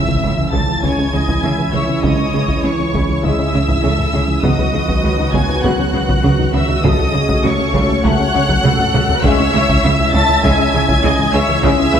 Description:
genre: cinematic, hybrid orchestral and electronic film score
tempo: 100 BPM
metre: 4/4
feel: straight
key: C# minor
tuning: A4 = 443 Hz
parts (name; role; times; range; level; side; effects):
- rich symphonic violin section; melody; 0.0-12.0 s; C#6 to A6; -22 LUFS; equal; none
- warm symphonic violin section; second line; 0.0-12.0 s; C#5 to A5; -22 LUFS; left 2 dB; none
- hollow soft pad; sustained chords; 0.0-12.0 s; D#3 to C#5; -22 LUFS; right 1 dB; chorus
- plucky analog bass; riff; 0.0-12.0 s; C#2 to C#3; -21 LUFS; left 2 dB; none
- rich symphonic cello section; bass; 0.0-12.0 s; C#3; -23 LUFS; right 4 dB; none
- swelling detuned saw bass; bass; 0.0-12.0 s; C#2; -23 LUFS; equal; none
- impact; sound effects; 0.0-2.0 s; none; -27 LUFS; right 1 dB; none
- tight sequenced synth; arpeggios; 0.1-11.9 s; C#3 to B4; -26 LUFS; right 2 dB; none
- taiko ensemble; drums; 0.1-12.0 s; none; -22 LUFS; equal; none
- rich studio double bass section; bass; 0.2-12.0 s; C#2; -23 LUFS; right 3 dB; none
- clear symphonic viola section; accompaniment; 0.8-12.0 s; F#4 to E5; -23 LUFS; equal; none
- mellow French horn section; sustained chords; 0.8-11.9 s; F#3 to C#4; -23 LUFS; left 4 dB; none
room: moderate scoring stage reverb, RT60 2.0 s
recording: none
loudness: -12 LUFS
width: side -8 dB against mid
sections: 0.0-12.0 A section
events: impact 0.0-2.0; drum fill 8.6-9.2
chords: 0.0 C#m; 4.4 B/C#; 6.8 F#m/C#; 9.2 C#m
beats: 0.24 0.84 1.44 | 2.04 2.64 3.24 3.84 | 4.44 5.04 5.64 6.24 | 6.84 7.44 8.04 8.64 | 9.24 9.84 10.44 11.04 | 11.64

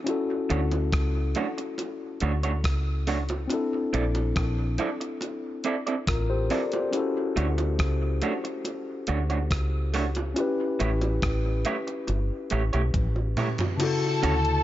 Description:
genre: lovers rock reggae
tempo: 70 BPM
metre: 4/4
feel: straight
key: D major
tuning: A4 = 440 Hz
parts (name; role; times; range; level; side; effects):
- mellow tine electric piano; accompaniment; 0.0-14.6 s; C#3 to D5; -30 LUFS; left 3 dB; dub echo
- gated 80s digital drum machine; drums; 0.1-14.6 s; crash cymbal, hi-hat, kick drum, rim click, toms; -31 LUFS; equal; gated reverb
- bongos; percussion; 0.1-14.0 s; none; -38 LUFS; right 3 dB; dub echo
- electric guitar through a small old amp; stabs; 0.5-14.3 s; A3 to D5; -31 LUFS; right 4 dB; none
- deep dub fingered electric bass; bass; 0.5-14.6 s; G1 to D2; -26 LUFS; equal; none
- dark studio string section; second line; 13.8-14.6 s; A4 to A5; -28 LUFS; left 1 dB; none
room: light reverb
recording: nothing above 7.6 kHz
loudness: -24 LUFS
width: side -13 dB against mid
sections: 0.0-13.8 A section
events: drum fill 12.9-13.8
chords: 0.1 Dmaj7; 3.5 Bbmaj9#11; 6.9 Dmaj7; 10.4 A7; 13.8 Dmaj7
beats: | 0.07 0.92 1.78 2.64 | 3.50 4.36 5.21 6.07 | 6.93 7.79 8.65 9.51 | 10.37 11.23 12.08 12.94 | 13.80

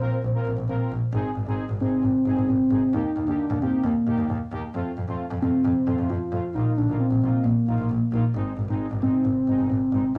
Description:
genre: synth-pop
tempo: 133 BPM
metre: 4/4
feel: straight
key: unclear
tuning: A4 = 440 Hz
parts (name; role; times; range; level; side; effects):
- soft octave-layered synth lead; melody; 0.0-10.2 s; Bb3 to C5; -25 LUFS; equal; chorus, cassette tape, tape echo
- analog synth brass; accompaniment; 0.0-10.2 s; Ab3 to Bb4; -34 LUFS; equal; chorus, cassette tape
- clear double bass; bass; 0.0-10.2 s; Ab1 to F2; -29 LUFS; equal; none
room: light reverb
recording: home recording on cassette, studio ambience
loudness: -24 LUFS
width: mono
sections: 0.0-1.1 A section; 1.1-10.2 B section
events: none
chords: 0.0 Bbsus2; 1.1 Ab; 2.9 Eb; 4.7 F; 6.5 Bbsus4; 8.4 Ab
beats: 0.23 0.68 | 1.13 1.58 2.04 2.49 | 2.94 3.39 3.84 4.29 | 4.74 5.19 5.65 6.10 | 6.55 7.00 7.45 7.90 | 8.35 8.80 9.26 9.71 | 10.16

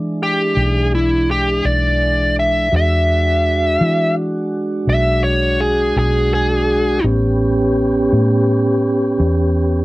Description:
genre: slow blues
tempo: 56 BPM (dotted quarters)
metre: 12/8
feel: straight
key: E mixolydian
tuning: A4 = 442 Hz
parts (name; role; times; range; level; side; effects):
- mellow tonewheel organ; sustained chords; 0.0-9.8 s; E3 to G4; -18 LUFS; right 1 dB; slow rotary speaker
- vintage muted fingered electric bass; bass; 0.0-9.8 s; A1 to E3; -18 LUFS; equal; none
- dark smooth lead guitar; melody; 0.2-7.0 s; E4 to E5; -16 LUFS; equal; overdrive, cassette tape
room: light reverb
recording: home recording on cassette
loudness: -14 LUFS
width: side -19 dB against mid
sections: 0.0-9.8 A section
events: lead electric guitar solo 0.0-9.8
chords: 0.0 E7; 7.0 A7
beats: 0.56 1.64 | 2.72 3.80 4.88 5.96 | 7.04 8.12 9.20

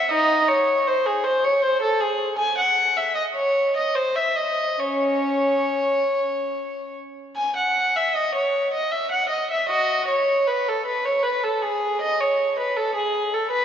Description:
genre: classical, baroque-style suite movement for unaccompanied violin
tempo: 67-80 BPM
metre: 3/4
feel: rubato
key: C# minor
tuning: A4 = 440 Hz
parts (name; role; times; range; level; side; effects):
- dark violin; solo; 0.0-13.6 s; C#4 to G#5; -20 LUFS; equal; none
room: wet church reverb, RT60 3.6 s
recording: recorded in a church or concert hall, nothing above 7.5 kHz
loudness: -19 LUFS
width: side -8 dB against mid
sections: 0.0-7.4 A section; 7.4-13.6 A section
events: none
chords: none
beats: | 0.10 0.85 1.61 | 2.38 3.15 3.94 | 4.79 5.67 6.52 | 7.36 8.15 8.92 | 9.69 10.46 11.23 | 12.01 12.76 13.51

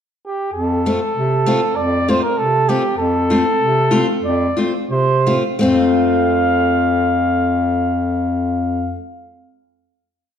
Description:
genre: alpine folk, alpine dance band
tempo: 82-99 BPM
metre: 2/4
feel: straight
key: F major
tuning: A4 = 441 Hz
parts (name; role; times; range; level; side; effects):
- warm flugelhorn; melody; 0.3-9.0 s; G4 to F5; -19 LUFS; right 2 dB; none
- warm bass clarinet; bass; 0.5-9.0 s; F2 to C3; -19 LUFS; equal; none
- picked steel-string acoustic guitar; accompaniment; 0.9-9.0 s; A3 to F4; -20 LUFS; left 3 dB; none
room: wet recital hall reverb, RT60 1.4 s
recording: dark, warm production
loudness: -14 LUFS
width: side -8 dB against mid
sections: 0.0-0.5 pickup bar; 0.5-5.6 A section; 5.6-8.5 final chord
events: slowing down 3.0-5.6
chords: 0.0 N.C.; 0.5 F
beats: | 0.53 1.15 | 1.76 2.36 | 2.97 3.59 | 4.23 4.90 | 5.61 6.34 | 7.06 7.78

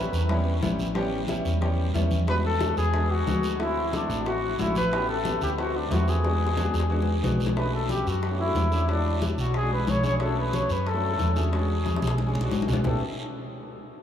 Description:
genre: Afro-Cuban jazz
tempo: 182 BPM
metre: 4/4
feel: straight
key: A major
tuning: A4 = 442 Hz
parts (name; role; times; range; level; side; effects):
- breathy trumpet; melody; 0.0-13.0 s; D4 to C#5; -29 LUFS; left 2 dB; none
- warm baby grand piano; accompaniment; 0.0-13.0 s; G3 to C#5; -30 LUFS; equal; none
- hollow-body short-scale fingered electric bass; bass; 0.0-13.0 s; A1 to F#2; -26 LUFS; equal; none
- bongos; percussion; 0.1-12.9 s; none; -35 LUFS; left 6 dB; none
- congas; percussion; 0.1-12.9 s; none; -34 LUFS; left 1 dB; none
- guiro; percussion; 0.1-12.9 s; none; -40 LUFS; right 4 dB; none
room: wet cathedral reverb, RT60 5.7 s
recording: in a vast, echoing space, small room ambience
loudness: -23 LUFS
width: side -9 dB against mid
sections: 0.0-7.6 A section; 7.6-12.8 B section; 12.8-14.0 C section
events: drum fill 6.2-7.6, 11.9-12.8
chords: 0.0 A9; 2.3 E9; 3.6 D9; 4.9 A9; 5.6 D9; 6.2 E9; 7.6 Bm7; 8.9 E13; 10.2 Bm7; 11.5 E13; 12.8 A9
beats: 0.29 0.62 | 0.95 1.29 1.62 1.95 | 2.28 2.61 2.94 3.27 | 3.60 3.93 4.26 4.59 | 4.92 5.25 5.58 5.91 | 6.24 6.58 6.91 7.24 | 7.57 7.90 8.23 8.56 | 8.89 9.22 9.55 9.88 | 10.21 10.54 10.87 11.20 | 11.53 11.86 12.19 12.52 | 12.85

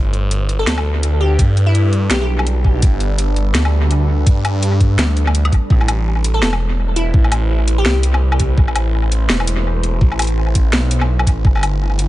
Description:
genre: half-time drum and bass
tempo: 167 BPM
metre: 4/4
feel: swing 58% on 16ths, half-time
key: A minor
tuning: A4 = 440 Hz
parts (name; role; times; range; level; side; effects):
- deep dark ambient pad; sustained chords; 0.0-12.1 s; G3 to C5; -26 LUFS; right 1 dB; chorus, built-in reverb, sidechain pumping
- phased detuned saw bass; bass; 0.0-12.1 s; E1 to G2; -15 LUFS; equal; phaser
- drum and bass drum kit; drums; 0.1-12.1 s; hi-hat, snare drum, woodblock; -21 LUFS; left 1 dB; overdrive, small room ambience, analog delay
- glassy wavetable pluck; melody; 0.6-2.3, 6.3-8.0 s; E4 to A4; -23 LUFS; left 1 dB; chorus, analog delay
- electronic kick drum; drums; 1.4-11.5 s; none; -13 LUFS; equal; small room ambience
room: little or no reverb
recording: echo-heavy mix, nothing above 10.5 kHz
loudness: -13 LUFS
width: side -16 dB against mid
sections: 0.0-5.7 A section; 5.7-12.1 A section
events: drop 0.0-5.7, 5.7-12.1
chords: 0.0 G; 5.7 Am; 11.4 G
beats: 0.31 0.67 1.03 | 1.39 1.75 2.11 2.47 | 2.83 3.19 3.54 3.90 | 4.26 4.62 4.98 5.34 | 5.70 6.06 6.42 6.78 | 7.14 7.50 7.86 8.21 | 8.57 8.93 9.29 9.65 | 10.01 10.37 10.73 11.09 | 11.45 11.81

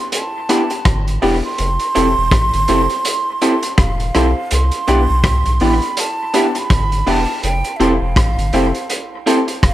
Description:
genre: lovers rock reggae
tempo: 82 BPM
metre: 4/4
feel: swing 58% on 16ths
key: C major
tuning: A4 = 442 Hz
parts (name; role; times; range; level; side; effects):
- breathy jazz flute; melody; 0.0-9.7 s; E5 to C6; -21 LUFS; right 2 dB; tape echo
- vintage drum kit; drums; 0.1-9.7 s; hi-hat, kick drum, rim click; -19 LUFS; equal; none
- clear baby grand piano; accompaniment; 0.5-9.4 s; A3 to G4; -20 LUFS; left 5 dB; none
- electric guitar through a small old amp; stabs; 0.5-9.5 s; B3 to C5; -20 LUFS; right 3 dB; spring reverb
- soft dub sub bass; bass; 0.9-9.7 s; E1 to C2; -18 LUFS; equal; none
room: light reverb, studio reverb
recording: none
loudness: -13 LUFS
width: side -14 dB against mid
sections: 0.0-4.5 A section; 4.5-9.7 A section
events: none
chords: 0.0 Cmaj7 (rootless); 1.6 Fmaj7; 4.5 Cmaj7; 7.4 Fmaj7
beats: 0.12 0.85 | 1.58 2.31 3.05 3.78 | 4.51 5.24 5.97 6.70 | 7.43 8.17 8.90 9.63

